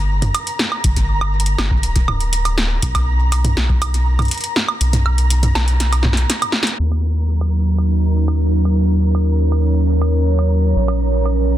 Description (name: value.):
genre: IDM.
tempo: 121 BPM.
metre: 4/4.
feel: straight.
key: Eb minor.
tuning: A4 = 443 Hz.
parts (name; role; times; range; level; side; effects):
round analog bass; bass; 0.0-11.6 s; D1 to Eb2; -16 LUFS; equal; none.
flickering grainy texture; texture; 0.0-11.6 s; Bb5; -28 LUFS; right 2 dB; built-in reverb, sidechain pumping.
electro analog drum machine; drums; 0.2-11.4 s; hi-hat, snare drum, toms, woodblock; -20 LUFS; right 1 dB; low-pass filter on hats, studio reverb, low-pass filter on toms, low-pass filter on snare, low-pass filter on perc, tape echo.
electronic kick drum; drums; 0.8-3.8 s; none; -19 LUFS; equal; studio reverb.
warbly tape-like pad; sustained chords; 7.3-11.6 s; F3 to Db5; -19 LUFS; right 2 dB; chorus, built-in reverb, phaser.
room: digital ambience.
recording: dense, heavily limited modern master, low-pass filter.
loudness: -14 LUFS.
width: side -13 dB against mid.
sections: 0.0-6.8 A section; 6.8-11.6 B section.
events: kick drops out 4.8-6.8; drum fill 5.8-6.8; band accent 6.6; filter sweep on ambient pad 6.8-11.6; filter sweep 6.8-11.6.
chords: 0.0 Gm; 2.8 N.C.; 6.8 Ebm7; 10.8 Bbm.